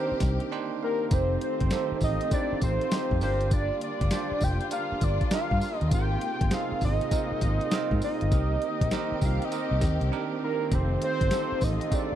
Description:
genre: R&B, new jack swing.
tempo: 100 BPM.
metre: 4/4.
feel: swing 66% on 16ths.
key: C minor.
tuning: A4 = 440 Hz.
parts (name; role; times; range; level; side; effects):
fat analog lead; melody; 0.0-12.2 s; Bb4 to G5; -30 LUFS; equal; chorus, phaser.
bell-like tine electric piano; accompaniment; 0.0-12.2 s; C4 to C6; -33 LUFS; right 10 dB; none.
warm studio string section; sustained chords; 0.0-12.2 s; C3 to G4; -36 LUFS; left 3 dB; none.
vintage muted fingered electric bass; bass; 0.1-12.2 s; F1 to Ab2; -28 LUFS; equal; none.
crisp 8-bit digital drum machine; drums; 0.2-12.1 s; hi-hat, kick drum, snare drum, tambourine; -28 LUFS; equal; none.
room: digital ambience.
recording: dry, close 1970s-style studio recording.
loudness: -24 LUFS.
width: side -11 dB against mid.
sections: 0.0-1.1 A section; 1.1-12.2 A section.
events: tine electric piano fill 0.2-1.1; break 10.1-10.7.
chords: 0.0 Cm7; 1.1 F7; 3.2 Gm7; 5.9 Ab69; 8.3 Cm7; 10.7 F7.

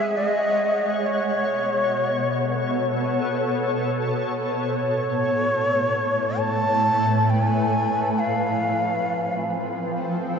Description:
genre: ambient.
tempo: free time.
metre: none.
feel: none.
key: unclear.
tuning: A4 = 438 Hz.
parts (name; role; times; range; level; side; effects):
breathy shakuhachi; melody; 0.0-10.0 s; C#5 to A5; -23 LUFS; equal; ping-pong delay.
shimmering ambient pad; sustained chords; 0.0-10.4 s; A2 to G5; -23 LUFS; equal; chorus, built-in reverb.
room: wet huge ambient reverb, RT60 9.5 s.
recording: in a vast, echoing space, nothing above 7.6 kHz.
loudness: -20 LUFS.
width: side -6 dB against mid.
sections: 0.0-10.4 A section.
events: filter sweep on ambient pad 0.0-10.4.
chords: 0.0 G#7sus4; 1.1 B5; 4.6 Aadd9; 8.2 F.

